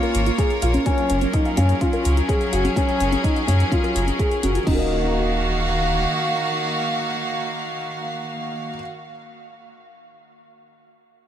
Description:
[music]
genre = piano and strings electronica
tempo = 126 BPM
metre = 4/4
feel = straight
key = Eb minor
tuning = A4 = 440 Hz
[part]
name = rich chamber string section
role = sustained chords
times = 0.0-8.9 s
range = Eb3 to F5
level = -24 LUFS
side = right 1 dB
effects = sidechain pumping, shimmer reverb
[part]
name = soft round pluck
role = arpeggios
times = 0.0-4.9 s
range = Db4 to F5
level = -28 LUFS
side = equal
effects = chorus, sidechain pumping, digital delay, shimmer reverb
[part]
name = felt-muted upright piano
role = riff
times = 0.0-8.8 s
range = Db4 to Eb5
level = -25 LUFS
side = left 1 dB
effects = digital delay, shimmer reverb
[part]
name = deep house drum kit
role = drums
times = 0.0-4.8 s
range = crash cymbal, hi-hat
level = -34 LUFS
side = left 3 dB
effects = none
[part]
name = warm sub bass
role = bass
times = 0.1-6.1 s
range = Eb1 to Gb2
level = -21 LUFS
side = equal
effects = sidechain pumping
[part]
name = electronic kick drum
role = drums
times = 0.4-4.8 s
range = none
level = -22 LUFS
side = equal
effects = none
[sound]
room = light reverb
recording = lossy compression artefacts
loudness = -19 LUFS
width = side -10 dB against mid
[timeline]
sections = 0.0-4.7 A section; 4.7-8.5 B section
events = filter sweep on synth arpeggio sound 0.0-4.7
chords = 0.0 Bbm7; 0.9 Gbmaj7; 4.7 Ebm

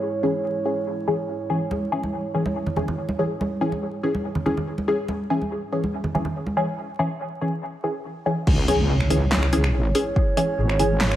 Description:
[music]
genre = deep dubstep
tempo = 142 BPM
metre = 4/4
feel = half-time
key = C# minor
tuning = A4 = 440 Hz
[part]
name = dark analog pad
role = sustained chords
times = 0.0-11.2 s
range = G#3 to C#5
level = -29 LUFS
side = right 4 dB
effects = chorus
[part]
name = filtered dub chord stab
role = stabs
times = 0.2-10.9 s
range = E3 to G#4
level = -25 LUFS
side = left 1 dB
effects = phaser, analog chorus, dub echo
[part]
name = congas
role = percussion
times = 1.7-6.5 s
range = none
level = -28 LUFS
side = right 1 dB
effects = none
[part]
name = wobble bass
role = bass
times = 8.5-11.2 s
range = G#1 to C#2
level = -21 LUFS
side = equal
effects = chorus
[part]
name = deep house drum kit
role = drums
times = 8.5-11.2 s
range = crash cymbal, finger snaps, handclaps, hi-hat, snare drum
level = -26 LUFS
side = equal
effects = overdrive
[part]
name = electronic kick drum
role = drums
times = 8.5-10.2 s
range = none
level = -20 LUFS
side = equal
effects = overdrive
[part]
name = impact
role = sound effects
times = 8.5-10.2 s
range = none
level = -31 LUFS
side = equal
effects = none
[sound]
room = moderate echo chamber reverb, RT60 1.5 s, digital ambience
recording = vinyl crackle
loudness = -21 LUFS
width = side -12 dB against mid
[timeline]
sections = 0.0-8.5 A section; 8.5-11.2 B section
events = break 6.8-8.5; drop 8.5-11.2; impact 8.5-10.2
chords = 0.0 C#m

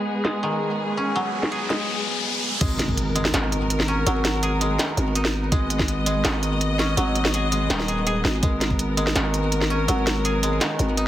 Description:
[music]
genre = half-time drum and bass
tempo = 165 BPM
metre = 4/4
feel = half-time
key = G# minor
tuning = A4 = 439 Hz
[part]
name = dark chamber string section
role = sustained chords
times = 0.0-11.1 s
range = G#3 to D#5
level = -28 LUFS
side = left 1 dB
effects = sidechain pumping
[part]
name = koto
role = arpeggios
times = 0.0-11.1 s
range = D#3 to G#4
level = -27 LUFS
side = equal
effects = digital delay
[part]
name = riser and impact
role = sound effects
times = 0.7-4.1 s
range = none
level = -30 LUFS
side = left 1 dB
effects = none
[part]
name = industrial drum kit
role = drums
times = 0.2-11.0 s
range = crash cymbal, hi-hat, snare drum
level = -25 LUFS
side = equal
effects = low-pass filter on snare, low-pass filter on hats, low-pass filter on cymbals
[part]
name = growling 808-style bass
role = bass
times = 2.6-11.1 s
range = D#1 to G#1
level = -24 LUFS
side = equal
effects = none
[part]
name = electronic kick drum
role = drums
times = 2.6-3.0, 5.5-5.9, 8.4-8.8 s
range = none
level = -24 LUFS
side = equal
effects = none
[sound]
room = light reverb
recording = heavily compressed radio sound, multiband compression, low-pass filter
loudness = -20 LUFS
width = side -13 dB against mid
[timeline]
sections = 0.0-2.6 A section; 2.6-11.1 B section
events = filter sweep on koto 0.0-2.6; filter sweep 0.0-2.6; riser 0.7-2.6; drop 2.6-11.1; impact 2.6-4.1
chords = 0.0 G#m; 2.6 G#madd9

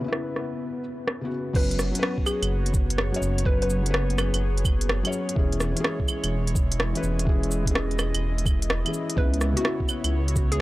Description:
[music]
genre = future garage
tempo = 126 BPM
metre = 4/4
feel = swing 66% on 16ths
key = unclear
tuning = A4 = 440 Hz
[part]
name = felt-muted upright piano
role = accompaniment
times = 0.0-10.6 s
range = C#3 to C#5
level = -30 LUFS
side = left 2 dB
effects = sidechain pumping, analog delay
[part]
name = warbly tape-like pad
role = sustained chords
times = 0.0-10.6 s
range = G#3 to D#5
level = -35 LUFS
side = left 1 dB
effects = chorus, built-in reverb, vintage 12-bit sampler grit, sidechain pumping
[part]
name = organic electronic drum kit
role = drums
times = 0.1-10.6 s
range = cabasa, claves, crash cymbal, hi-hat, rim click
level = -28 LUFS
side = right 1 dB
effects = overdrive, low-pass filter on snare, low-pass filter on perc, low-pass filter on cymbals, low-pass filter on hats, low-pass filter on room
[part]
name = dark detuned saw bass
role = bass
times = 1.5-10.6 s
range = E1 to C#2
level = -26 LUFS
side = equal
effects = sidechain pumping
[part]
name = electronic kick drum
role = drums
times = 1.5-10.5 s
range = none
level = -24 LUFS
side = equal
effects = none
[part]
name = hollow square pluck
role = melody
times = 1.6-3.7, 9.2-10.6 s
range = F#4 to B4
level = -33 LUFS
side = equal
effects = chorus, tape echo
[sound]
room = little or no reverb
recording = dry, gritty hardware recording, cassette tape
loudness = -22 LUFS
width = side -18 dB against mid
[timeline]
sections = 0.0-1.6 A section; 1.6-10.6 B section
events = none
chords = 0.0 C#m7; 1.6 F#sus4; 5.4 E6; 9.2 C#m7

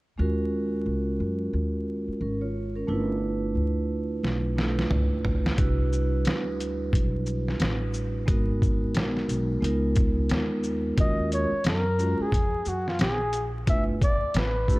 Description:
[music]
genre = hip hop, jazz-hop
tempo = 89 BPM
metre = 4/4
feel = swing 61% on 16ths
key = unclear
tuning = A4 = 440 Hz
[part]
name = vibraphone with medium mallets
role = accompaniment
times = 0.2-14.8 s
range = G3 to Db5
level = -28 LUFS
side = right 1 dB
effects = none
[part]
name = upright bass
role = bass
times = 0.2-14.8 s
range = G1 to Gb2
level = -29 LUFS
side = equal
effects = none
[part]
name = trip hop sampler-style drum kit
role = drums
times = 4.2-14.8 s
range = hi-hat, kick drum, shaker, snare drum, toms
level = -26 LUFS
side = equal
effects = none
[part]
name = breathy flugelhorn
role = melody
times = 11.0-14.8 s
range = F4 to E5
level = -28 LUFS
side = equal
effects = slapback echo
[sound]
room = light reverb, small room ambience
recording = dark, warm production, vinyl crackle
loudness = -24 LUFS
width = side -21 dB against mid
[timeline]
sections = 0.2-11.0 A section; 11.0-14.8 B section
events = drum fill 4.2-5.6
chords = 0.2 Ebm11; 2.9 G13; 5.6 Cmaj9#11; 8.3 Abm9; 9.6 Db13; 11.0 Ebm11; 13.7 G13

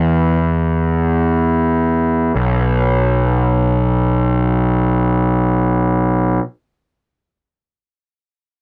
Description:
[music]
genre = rock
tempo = free time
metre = none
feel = none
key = unclear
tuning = A4 = 438 Hz
[part]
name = fuzz picked electric bass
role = bass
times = 0.0-6.4 s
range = B1 to E2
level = -16 LUFS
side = equal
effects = overdrive
[sound]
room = little or no reverb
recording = none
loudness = -16 LUFS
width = mono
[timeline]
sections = 0.0-2.3 A section; 2.3-7.8 B section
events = slowing down 0.0-2.3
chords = none

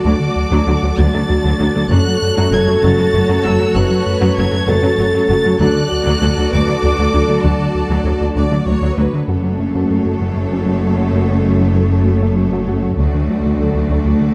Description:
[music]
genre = cinematic, hybrid orchestral and electronic film score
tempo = 65 BPM (dotted quarters)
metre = 6/8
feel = straight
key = F# minor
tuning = A4 = 440 Hz
[part]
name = rich chamber violin section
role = melody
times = 0.0-14.3 s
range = C#5 to A6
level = -28 LUFS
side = equal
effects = none
[part]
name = clear symphonic violin section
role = second line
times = 0.0-14.3 s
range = F#4 to D5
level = -28 LUFS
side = equal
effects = none
[part]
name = clear symphonic viola section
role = accompaniment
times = 0.0-14.3 s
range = F#3 to F#4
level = -25 LUFS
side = equal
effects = none
[part]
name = dark French horn section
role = sustained chords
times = 0.0-13.7 s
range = F#3 to B4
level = -23 LUFS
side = equal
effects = none
[part]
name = glassy FM pad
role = sustained chords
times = 0.0-14.3 s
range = F#3 to D5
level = -27 LUFS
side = equal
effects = none
[part]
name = smooth synth bass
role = riff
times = 0.0-14.3 s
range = D2 to F#3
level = -22 LUFS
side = equal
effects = none
[part]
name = tight sequenced synth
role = arpeggios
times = 0.1-14.3 s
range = D3 to F#4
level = -28 LUFS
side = equal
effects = none
[part]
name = rich symphonic cello section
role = bass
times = 0.1-14.3 s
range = D2 to F#2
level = -22 LUFS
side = equal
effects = none
[part]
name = rich symphonic double bass section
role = bass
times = 0.1-14.3 s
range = F#1 to D2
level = -22 LUFS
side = equal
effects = none
[sound]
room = moderate scoring stage reverb, RT60 2.1 s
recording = dark, warm production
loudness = -15 LUFS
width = mono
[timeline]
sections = 0.0-9.3 A section; 9.3-14.3 B section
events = none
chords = 0.0 D; 1.9 F#m; 5.6 D; 9.3 F#m; 13.0 D

